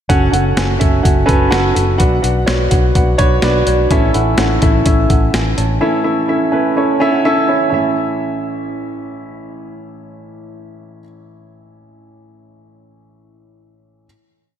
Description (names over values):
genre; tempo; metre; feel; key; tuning
piano-driven pop; 126 BPM; 4/4; straight; A major; A4 = 440 Hz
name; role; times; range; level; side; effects
dark upright piano; accompaniment; 0.1-14.1 s; A1 to A5; -15 LUFS; right 1 dB; slapback echo
vintage muted fingered electric bass; bass; 0.1-5.8 s; F#1 to B1; -17 LUFS; equal; none
boom bap sampler-style drum kit; drums; 0.1-5.7 s; hi-hat, kick drum, snare drum; -16 LUFS; equal; none
room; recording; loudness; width
moderate lush hall reverb, RT60 2.3 s; big arena sound; -12 LUFS; side -9 dB against mid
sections
0.1-7.7 chorus; 7.7-11.5 final chord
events
upright piano fill 6.8-7.7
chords
0.1 F#m; 2.0 Bm; 3.9 A